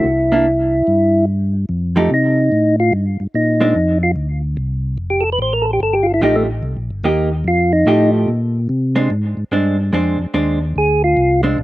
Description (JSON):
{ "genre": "jazz", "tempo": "146 BPM", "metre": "4/4", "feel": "swing 65% on 8ths", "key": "F mixolydian", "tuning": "A4 = 441 Hz", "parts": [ { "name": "percussive tonewheel organ", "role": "melody", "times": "0.0-8.1, 10.8-11.4 s", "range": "A3 to C5", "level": "-15 LUFS", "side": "equal", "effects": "slow rotary speaker" }, { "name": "vintage hollow-body jazz guitar", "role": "accompaniment", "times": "0.0-3.7, 6.2-11.6 s", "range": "F3 to G4", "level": "-18 LUFS", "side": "right 2 dB", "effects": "slapback echo" }, { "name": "mellow tonewheel organ", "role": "bass", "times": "0.0-11.6 s", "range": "F1 to C3", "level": "-18 LUFS", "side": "equal", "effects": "chorus vibrato, slow rotary speaker" } ], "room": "little or no reverb", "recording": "recorded outdoors, with no room sound", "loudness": "-14 LUFS", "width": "side -16 dB against mid", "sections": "0.0-1.7 A section; 1.7-11.6 B section", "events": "tonewheel organ solo 1.7-11.6", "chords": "0.0 C; 1.7 F9; 3.3 Bbadd9; 5.0 F9; 6.6 Cm7; 7.5 F9; 8.3 Bb9", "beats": "| 0.04 0.46 0.87 1.28 | 1.69 2.10 2.52 2.93 | 3.34 3.75 4.16 4.57 | 4.99 5.40 5.81 6.22 | 6.63 7.04 7.46 7.87 | 8.28 8.69 9.10 9.52 | 9.93 10.34 10.75 11.16 | 11.58" }